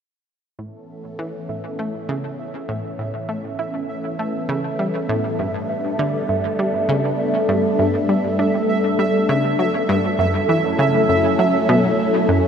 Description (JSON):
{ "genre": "ambient", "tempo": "100 BPM", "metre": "4/4", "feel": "straight", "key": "unclear", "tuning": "A4 = 440 Hz", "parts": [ { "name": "phased analog pad", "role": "sustained chords", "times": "0.6-12.5 s", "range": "E3 to A4", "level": "-21 LUFS", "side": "left 1 dB", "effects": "phaser, chorus" }, { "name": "analog pluck", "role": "riff", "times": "0.6-12.4 s", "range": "F#2 to E4", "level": "-23 LUFS", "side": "equal", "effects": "chorus, tape echo" }, { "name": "pulsing gated texture", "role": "texture", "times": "1.2-12.5 s", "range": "E5", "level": "-24 LUFS", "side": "right 4 dB", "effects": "chorus, built-in reverb" } ], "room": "wet huge ambient reverb, RT60 7.5 s", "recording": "none", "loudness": "-17 LUFS", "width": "side -7 dB against mid", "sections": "0.6-12.5 A section", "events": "fade-in on synth arpeggio sound 0.6-12.5; fade-in on analog synth pad 0.6-12.5; fade-in on synth texture 0.6-12.5", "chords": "0.6 Aadd9; 5.4 Gadd9; 10.2 F#m7", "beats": "| 0.59 1.19 1.79 2.39 | 2.99 3.59 4.19 4.79 | 5.39 5.99 6.59 7.19 | 7.79 8.39 8.99 9.59 | 10.19 10.79 11.39 11.99" }